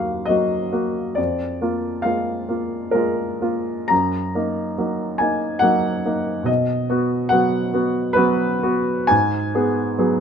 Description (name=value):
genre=classical, romantic nocturne for solo piano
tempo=60-73 BPM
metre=3/4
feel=rubato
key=Eb minor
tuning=A4 = 440 Hz
part: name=warm baby grand piano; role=solo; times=0.0-10.2 s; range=Eb2 to Bb5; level=-18 LUFS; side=equal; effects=none
room=light reverb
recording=none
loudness=-18 LUFS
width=side -7 dB against mid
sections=0.0-10.2 A section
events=none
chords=0.0 Ebm; 1.2 Bb7/F; 3.9 Ebm/Gb; 6.5 B; 9.1 Abm7